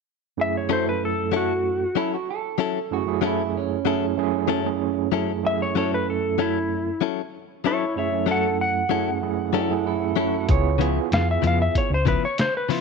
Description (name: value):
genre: straight-eighth soul blues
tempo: 95 BPM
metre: 4/4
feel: straight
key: F# minor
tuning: A4 = 440 Hz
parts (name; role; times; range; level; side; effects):
- clean lap steel guitar; melody; 0.4-12.8 s; E4 to F#5; -25 LUFS; left 2 dB; slapback echo
- overdriven tine electric piano; accompaniment; 0.4-11.9 s; F#2 to A4; -25 LUFS; right 11 dB; fast tremolo
- direct-recorded clean electric guitar; stabs; 0.7-12.8 s; C#3 to A4; -26 LUFS; left 15 dB; none
- electric guitar through a small old amp; second line; 2.0-5.1, 9.6-10.8 s; C#4 to C#5; -28 LUFS; right 12 dB; none
- hollow-body short-scale fingered electric bass; bass; 10.5-12.1 s; C#2 to E#2; -22 LUFS; left 1 dB; none
- lo-fi sampler-style drum kit; drums; 10.5-12.8 s; hi-hat, kick drum, snare drum; -24 LUFS; left 1 dB; none
room: light reverb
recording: 1960s-style stereo with parts hard left and right, nothing above 10.4 kHz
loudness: -21 LUFS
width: side -4 dB against mid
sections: 0.4-12.8 A section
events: none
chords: 0.4 F#m7; 10.5 C#7#9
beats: | 0.39 1.02 1.65 2.28 | 2.91 3.54 4.17 4.80 | 5.44 6.07 6.70 7.33 | 7.96 8.59 9.22 9.85 | 10.48 11.11 11.74 12.37